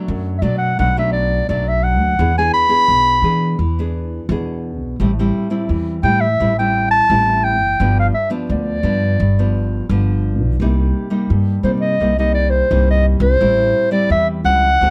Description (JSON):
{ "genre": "samba and choro", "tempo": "86 BPM", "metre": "4/4", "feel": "straight", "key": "unclear", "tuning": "A4 = 440 Hz", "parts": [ { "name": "nylon-string guitar", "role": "accompaniment", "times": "0.0-14.9 s", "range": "F#2 to G#4", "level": "-24 LUFS", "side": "equal", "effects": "none" }, { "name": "upright bass", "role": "bass", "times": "0.1-14.9 s", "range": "F#1 to E3", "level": "-20 LUFS", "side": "equal", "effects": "none" }, { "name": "mellow clarinet", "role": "melody", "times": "0.4-14.9 s", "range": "C5 to B5", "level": "-18 LUFS", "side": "equal", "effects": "plate reverb" } ], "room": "light reverb", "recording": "close, detailed microphones", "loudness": "-16 LUFS", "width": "mono", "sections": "0.0-14.9 A section", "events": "none", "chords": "0.0 Bm7; 2.2 E7; 5.0 Am7; 7.8 G7; 10.6 Cm7; 13.4 Am7" }